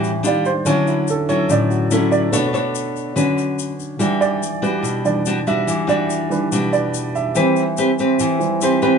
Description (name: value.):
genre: bossa nova.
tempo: 143 BPM.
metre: 4/4.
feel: straight.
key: D major.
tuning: A4 = 442 Hz.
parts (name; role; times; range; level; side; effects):
nylon-string guitar; accompaniment; 0.0-9.0 s; A2 to C#5; -18 LUFS; left 1 dB; none.
warm baby grand piano; accompaniment; 0.0-9.0 s; A2 to E5; -20 LUFS; right 3 dB; none.
tube shaker; percussion; 0.0-9.0 s; none; -30 LUFS; left 10 dB; none.
room: light reverb.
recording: nothing above 10.6 kHz.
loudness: -16 LUFS.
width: side -6 dB against mid.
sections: 0.0-4.0 A section; 4.0-9.0 A section.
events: grand piano solo 0.0-9.0.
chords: 0.2 Ebmaj9; 0.7 Dmaj9; 2.3 Bm9; 3.2 D6; 4.0 Em9; 7.4 Cmaj7/E.